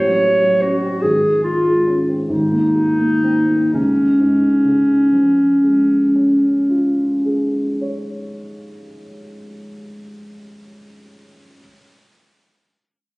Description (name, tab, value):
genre	classical, romantic duo for clarinet and grand piano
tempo	38-53 BPM (dotted quarters)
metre	6/8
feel	rubato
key	Db major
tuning	A4 = 442 Hz
part	mellow clarinet	melody	0.0-7.9 s	Db4 to Db5	-14 LUFS	equal	none
part	dark concert grand piano	accompaniment	0.0-11.6 s	Ab1 to Db5	-22 LUFS	equal	none
room	wet recital hall reverb, RT60 1.4 s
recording	recorded on a phone in the room, studio reverb, compression, nothing above 10.4 kHz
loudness	-14 LUFS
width	side -24 dB against mid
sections	0.0-3.8 A section; 3.8-9.4 B section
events	slowing down 0.0-3.8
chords	0.0 Gbm/A; 1.0 Db/Ab; 2.3 Ab9; 3.8 Db